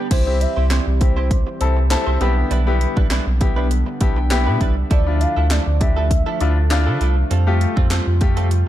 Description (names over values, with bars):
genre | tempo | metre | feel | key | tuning
dance-pop | 100 BPM | 4/4 | straight | C major | A4 = 441 Hz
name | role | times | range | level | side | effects
chorused pulse-width pad | sustained chords | 0.0-8.7 s | C3 to G4 | -29 LUFS | equal | sidechain pumping
direct-recorded clean electric guitar | riff | 0.0-8.5 s | F3 to C5 | -29 LUFS | right 7 dB | lush chorus
warm velvety synth lead | melody | 0.1-6.7 s | C5 to F5 | -27 LUFS | equal | chorus, digital delay
warm sub bass | bass | 0.1-8.6 s | B1 to D3 | -18 LUFS | equal | sidechain pumping
house drum kit | drums | 0.1-8.7 s | crash cymbal, handclaps, hi-hat, kick drum, snare drum | -20 LUFS | equal | none
clear concert grand piano | accompaniment | 0.3-8.5 s | A3 to A5 | -24 LUFS | left 5 dB | sidechain pumping
room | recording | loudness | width
light reverb | dark, warm production | -15 LUFS | side -13 dB against mid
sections
0.1-8.7 A section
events
grand piano fill 3.7-4.9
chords
0.1 C; 2.2 G6/B; 4.9 Dmadd9; 7.3 Fadd9